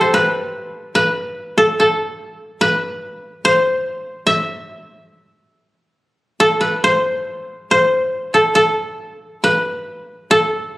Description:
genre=celtic folk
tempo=71 BPM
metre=4/4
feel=uneven beats, rubato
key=unclear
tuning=A4 = 437 Hz
part: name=koto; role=solo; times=0.0-10.8 s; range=G4 to E5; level=-15 LUFS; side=equal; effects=none
room=moderate recital hall reverb, RT60 1.6 s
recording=recorded on a phone in the room, club reverb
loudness=-14 LUFS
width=side -18 dB against mid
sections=0.0-10.8 A section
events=none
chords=none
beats=| 0.09 0.92 1.76 2.59 | 3.42 4.25 5.08 5.96 | 6.86 7.72 8.58 9.44 | 10.29

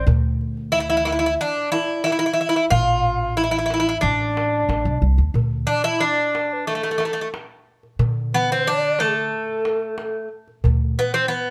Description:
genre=Turkish makam ensemble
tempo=91 BPM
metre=4/4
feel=straight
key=D makam nikriz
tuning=A4 = 440 Hz
part: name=Greek bouzouki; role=melody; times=0.0-11.5 s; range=A3 to F4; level=-23 LUFS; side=equal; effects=plate reverb
part: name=breathy mellow low ney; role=second line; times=0.0-11.5 s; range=G#4 to F5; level=-28 LUFS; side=equal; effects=none
part: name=upright bass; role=bass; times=0.0-10.9 s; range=A1 to D3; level=-25 LUFS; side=equal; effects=none
part: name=darbuka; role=percussion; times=0.1-11.5 s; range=none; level=-27 LUFS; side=equal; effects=none
room=light reverb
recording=none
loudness=-21 LUFS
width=mono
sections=0.0-5.4 A section; 5.4-11.5 B section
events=none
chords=none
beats=| 0.07 0.73 1.39 2.05 | 2.71 3.37 4.03 4.69 | 5.35 6.01 6.67 7.34 | 8.00 8.66 9.32 9.98 | 10.64 11.30

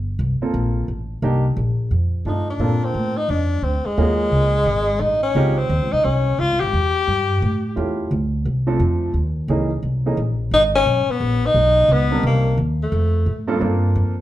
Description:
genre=jazz, small-group swing and bop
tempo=174 BPM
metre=4/4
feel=swing 64% on 8ths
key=unclear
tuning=A4 = 435 Hz
part: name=upright bass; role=bass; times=0.0-14.2 s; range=G1 to Bb2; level=-20 LUFS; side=equal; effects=none
part: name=warm upright piano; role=accompaniment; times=0.4-5.6, 7.8-14.1 s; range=G2 to A#4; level=-23 LUFS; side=right 2 dB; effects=none
part: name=breathy tenor saxophone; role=melody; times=2.3-8.0, 10.5-13.5 s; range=Ab3 to G4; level=-19 LUFS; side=left 2 dB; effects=none
room=wet club reverb, RT60 0.8 s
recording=heard from further back in the room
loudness=-17 LUFS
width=side -13 dB against mid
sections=0.0-2.6 A section; 2.6-13.6 B section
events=none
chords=0.0 Gm11; 1.2 Cm7; 1.9 F13; 2.6 Bbmaj9; 4.0 Ebm11; 4.7 Amaj7(b5, no3)/G#; 5.4 Dbmaj9#11; 6.7 Em; 7.4 A7b13; 8.1 Dm7; 9.5 Abadd11; 10.9 Bmaj9; 12.2 Cm9; 12.9 F69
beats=0.20 0.54 0.89 | 1.23 1.57 1.92 2.26 | 2.60 2.95 3.29 3.64 | 3.98 4.32 4.67 5.01 | 5.36 5.70 6.04 6.39 | 6.73 7.07 7.42 7.76 | 8.11 8.45 8.79 9.14 | 9.48 9.82 10.17 10.51 | 10.86 11.20 11.54 11.89 | 12.23 12.58 12.92 13.27 | 13.61 13.95

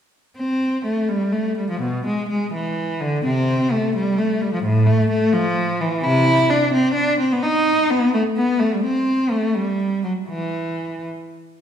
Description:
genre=classical, baroque-style suite movement for unaccompanied cello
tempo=85 BPM (dotted quarters)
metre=6/8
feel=uneven beats, rubato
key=A minor, E minor from 6.0 s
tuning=A4 = 440 Hz
part: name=rich cello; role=solo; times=0.4-11.0 s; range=A2 to E4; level=-18 LUFS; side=equal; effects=none
room=wet recital hall reverb, RT60 1.4 s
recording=heard from further back in the room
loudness=-18 LUFS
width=side -8 dB against mid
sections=0.4-11.6 A section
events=none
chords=none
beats=| 0.38 1.09 | 1.82 2.54 | 3.25 3.96 | 4.65 5.35 | 6.04 6.73 | 7.44 8.14 | 8.85 9.57 | 10.31

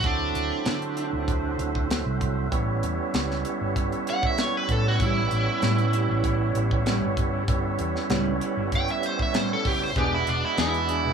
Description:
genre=straight-eighth soul blues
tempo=97 BPM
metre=4/4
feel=straight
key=A mixolydian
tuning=A4 = 440 Hz
part: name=biting overdriven guitar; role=melody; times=0.0-11.1 s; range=D4 to G5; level=-27 LUFS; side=right 2 dB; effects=none
part: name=percussive tonewheel organ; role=accompaniment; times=0.0-11.1 s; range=F#3 to F#4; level=-29 LUFS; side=right 5 dB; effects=slow rotary speaker, overdrive
part: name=clear horn section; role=sustained chords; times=0.0-11.1 s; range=D4 to D5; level=-36 LUFS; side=left 2 dB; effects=none
part: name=vintage muted fingered electric bass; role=bass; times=0.0-11.1 s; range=E1 to D3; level=-28 LUFS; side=equal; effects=none
part: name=tight funk drum kit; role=drums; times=0.0-11.0 s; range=hi-hat, kick drum, snare drum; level=-28 LUFS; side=equal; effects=none
part: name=semi-hollow electric guitar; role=stabs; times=5.0-11.1 s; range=A2 to G#4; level=-31 LUFS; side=left 2 dB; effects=digital delay
room=moderate club reverb, RT60 0.5 s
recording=none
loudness=-22 LUFS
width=side -6 dB against mid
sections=0.0-11.1 A section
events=none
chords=0.0 D7; 2.5 A7; 10.0 E7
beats=| 0.04 0.66 1.28 1.90 | 2.52 3.14 3.76 4.38 | 5.00 5.62 6.24 6.86 | 7.48 8.10 8.72 9.34 | 9.96 10.58

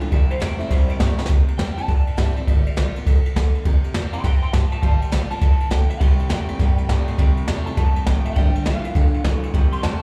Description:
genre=rockabilly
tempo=204 BPM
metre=4/4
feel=swing 64% on 8ths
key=C major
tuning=A4 = 439 Hz
part: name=picked steel-string acoustic guitar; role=accompaniment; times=0.0-10.0 s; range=G2 to F4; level=-33 LUFS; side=equal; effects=slapback echo
part: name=electric guitar through a small old amp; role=riff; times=0.0-1.3, 6.0-10.0 s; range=G2 to A3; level=-30 LUFS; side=equal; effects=none
part: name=upright bass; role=bass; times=0.0-10.0 s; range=G1 to G2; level=-26 LUFS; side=equal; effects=none
part: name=jazz brush drum kit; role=drums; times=0.0-9.9 s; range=kick drum, ride cymbal, snare drum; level=-21 LUFS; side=equal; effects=none
part: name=electric guitar through a small old amp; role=melody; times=0.1-10.0 s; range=C5 to C6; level=-33 LUFS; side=equal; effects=analog chorus, slapback echo, analog delay
room=small room ambience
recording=live gig heard through the venue's PA, club reverb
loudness=-20 LUFS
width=mono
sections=0.0-1.3 A section; 1.3-10.0 A section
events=clean electric guitar solo 0.0-10.0; drum fill 1.1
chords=0.1 C; 2.5 G7; 3.7 C; 4.8 G7; 6.0 C; 8.4 G7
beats=| 0.12 0.41 0.71 1.00 | 1.30 1.59 1.88 2.18 | 2.47 2.77 3.06 3.36 | 3.65 3.94 4.24 4.53 | 4.83 5.12 5.42 5.71 | 6.01 6.30 6.59 6.89 | 7.18 7.48 7.77 8.07 | 8.36 8.65 8.95 9.24 | 9.54 9.83

